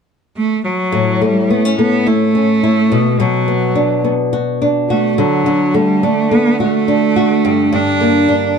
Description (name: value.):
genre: pop.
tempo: 106 BPM.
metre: 4/4.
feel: straight.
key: unclear.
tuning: A4 = 439 Hz.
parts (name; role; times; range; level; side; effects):
rich cello; melody; 0.4-8.6 s; F#3 to D4; -15 LUFS; right 2 dB; plate reverb.
flamenco guitar; accompaniment; 0.9-8.6 s; G2 to F#4; -14 LUFS; left 1 dB; none.
room: moderate small room reverb, RT60 0.5 s.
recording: dark, warm production.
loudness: -12 LUFS.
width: side -6 dB against mid.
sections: 0.9-8.6 A section.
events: none.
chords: 0.0 N.C.; 0.9 A; 2.9 Bm; 5.2 D; 7.4 Gm.